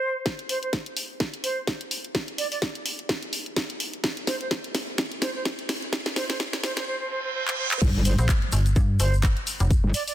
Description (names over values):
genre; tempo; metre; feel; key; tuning
bass house; 127 BPM; 4/4; swing 57% on 16ths; unclear; A4 = 439 Hz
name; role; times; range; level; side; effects
concert flute; melody; 0.0-10.1 s; C5 to D5; -31 LUFS; right 2 dB; digital delay
electronic kick drum; drums; 0.3-9.8 s; none; -24 LUFS; equal; high-pass filter on kick
garage drum kit; drums; 0.3-10.1 s; crash cymbal, handclaps, hi-hat, snare drum; -28 LUFS; equal; none
reverse cymbal and impact; sound effects; 7.0-9.7 s; none; -32 LUFS; right 2 dB; none
metallic wobble bass; bass; 7.8-9.9 s; G1; -22 LUFS; equal; chorus, tube saturation, sidechain pumping
tube shaker; percussion; 7.8-10.1 s; none; -36 LUFS; left 4 dB; none
metallic FM bass; bass; 8.2-9.8 s; F1 to G2; -22 LUFS; equal; overdrive, sidechain pumping
room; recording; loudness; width
light reverb, digital ambience; dense, heavily limited modern master, high-pass filter; -24 LUFS; side -13 dB against mid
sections
0.3-7.8 A section; 7.8-10.1 B section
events
build-up 0.3-7.8; drum fill 0.3-6.9, 7.5-7.8; reverse cymbal 7.0-7.8; drop 7.8-10.1; impact 7.8-9.7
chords
none